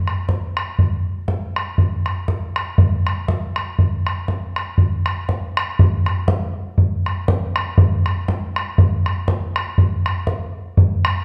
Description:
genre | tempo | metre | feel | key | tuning
celtic folk | 120 BPM | 2/4 | swing 56% on 8ths | none | none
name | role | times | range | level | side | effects
bodhran | percussion | 0.1-11.2 s | none | -19 LUFS | equal | none
room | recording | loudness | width
wet large studio reverb, RT60 1.3 s | band playing live in one room | -20 LUFS | mono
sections
0.0-1.8 A section; 1.8-9.8 A section; 9.8-11.2 B section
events
none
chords
none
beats
0.29 | 0.79 1.28 | 1.78 2.28 | 2.78 3.28 | 3.78 4.28 | 4.78 5.28 | 5.78 6.28 | 6.78 7.28 | 7.78 8.28 | 8.78 9.28 | 9.78 10.28 | 10.77

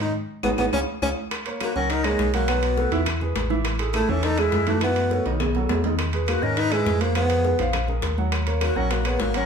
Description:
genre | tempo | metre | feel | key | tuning
Afro-Cuban jazz | 205 BPM | 4/4 | straight | F# major | A4 = 440 Hz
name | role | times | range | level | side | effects
mellow tenor saxophone | melody | 0.0-9.5 s | G#3 to D#4 | -24 LUFS | equal | none
warm concert grand piano | accompaniment | 0.0-9.5 s | Eb3 to F#5 | -28 LUFS | right 4 dB | none
sub bass with octave | bass | 0.0-9.5 s | Ab1 to Ab2 | -26 LUFS | equal | none
congas | percussion | 0.0-9.3 s | none | -34 LUFS | left 4 dB | none
bongos | percussion | 0.4-9.3 s | none | -33 LUFS | left 5 dB | none
claves | percussion | 0.4-9.2 s | none | -37 LUFS | left 7 dB | none
timbales | percussion | 0.4-9.5 s | none | -31 LUFS | right 3 dB | none
breathy silver concert flute | second line | 1.6-9.5 s | D#4 to B4 | -30 LUFS | left 5 dB | none
room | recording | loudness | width
wet large studio reverb, RT60 0.8 s | band playing live in one room | -20 LUFS | side -6 dB against mid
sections
0.0-1.3 A section; 1.3-9.5 B section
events
band accent 0.1-1.3; drum fill 5.3-6.0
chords
0.1 Abm7; 0.7 Db; 1.3 F#6; 2.5 B5; 3.1 E; 3.6 A5; 4.8 F#m7; 5.4 B7; 6.0 Emaj7; 7.2 Fdim; 7.7 A#5; 8.3 D#m7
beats
| 0.14 0.44 0.73 1.02 | 1.31 1.60 1.90 2.19 | 2.48 2.77 3.06 3.36 | 3.65 3.94 4.23 4.53 | 4.82 5.11 5.40 5.69 | 5.99 6.28 6.57 6.86 | 7.16 7.45 7.74 8.03 | 8.32 8.62 8.91 9.20

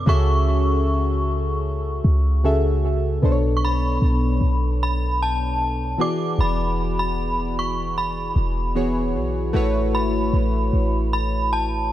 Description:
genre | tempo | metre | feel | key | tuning
contemporary R&B | 76 BPM | 4/4 | straight | unclear | A4 = 442 Hz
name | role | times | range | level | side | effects
synth chime | melody | 0.0-11.9 s | A5 to D6 | -26 LUFS | equal | ensemble chorus, analog delay
warm analog keys | accompaniment | 0.0-11.9 s | B2 to E5 | -24 LUFS | left 1 dB | chorus, analog delay
clean 808-style bass | bass | 0.0-11.9 s | E1 to C#2 | -21 LUFS | equal | none
room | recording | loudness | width
digital ambience | echo-heavy mix | -19 LUFS | side -13 dB against mid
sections
0.0-3.2 A section; 3.2-11.9 B section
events
none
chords
0.1 F#m9/C#; 3.2 Bm7; 6.0 E7; 9.5 A69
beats
| 0.07 0.86 1.65 2.44 | 3.23 4.01 4.80 5.59 | 6.38 7.17 7.96 8.75 | 9.54 10.33 11.12 11.91

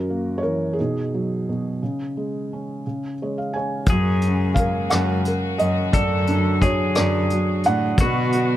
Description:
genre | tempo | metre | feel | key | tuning
acoustic folk-pop ballad | 58 BPM (dotted quarters) | 6/8 | straight | F# major | A4 = 440 Hz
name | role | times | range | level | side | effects
felt-muted upright piano | melody | 0.0-8.6 s | F#2 to G#5 | -23 LUFS | right 2 dB | none
warm chamber string section | sustained chords | 3.8-8.6 s | C#3 to F#4 | -31 LUFS | left 3 dB | none
pedal steel guitar | second line | 3.9-8.6 s | F#4 to A4 | -26 LUFS | left 2 dB | none
rich cello | bass | 3.9-8.6 s | F#2 to B2 | -22 LUFS | left 1 dB | none
vintage brush drum kit | drums | 3.9-8.5 s | hi-hat, kick drum, rim click | -22 LUFS | left 1 dB | none
room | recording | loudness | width
little or no reverb | close, detailed microphones | -19 LUFS | side -13 dB against mid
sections
0.0-3.9 A section; 3.9-8.6 B section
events
felt piano fill 2.8-3.9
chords
0.0 F#7; 0.8 B6; 1.8 C#sus2; 3.9 F#add9; 5.9 D/F#; 8.0 Bm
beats
0.78 | 1.81 2.84 | 3.88 4.91 | 5.94 6.96 | 7.99

